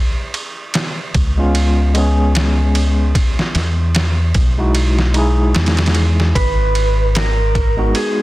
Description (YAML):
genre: trip hop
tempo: 75 BPM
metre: 4/4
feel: swing 57% on 16ths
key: unclear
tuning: A4 = 441 Hz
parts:
  - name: trip hop sampler-style drum kit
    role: drums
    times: 0.3-8.2 s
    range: kick drum, ride cymbal, snare drum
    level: -19 LUFS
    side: equal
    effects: overdrive
  - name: deep dub fingered electric bass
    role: bass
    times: 1.1-7.9 s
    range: G#1 to E2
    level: -15 LUFS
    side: equal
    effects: tube saturation
  - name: overdriven tine electric piano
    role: accompaniment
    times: 1.4-8.2 s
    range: G#3 to G#4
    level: -20 LUFS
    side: equal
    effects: tremolo, tape echo
  - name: electric slide guitar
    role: melody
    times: 6.4-8.2 s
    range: G#4 to B4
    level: -19 LUFS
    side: right 2 dB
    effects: vintage 12-bit sampler grit
room: little or no reverb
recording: dense, heavily limited modern master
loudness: -13 LUFS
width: side -18 dB against mid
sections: 0.0-8.2 A section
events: none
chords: 0.0 C#7; 3.2 Emaj9; 6.4 G#m7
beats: 0.75 1.55 2.35 | 3.15 3.95 4.75 5.55 | 6.35 7.15 7.95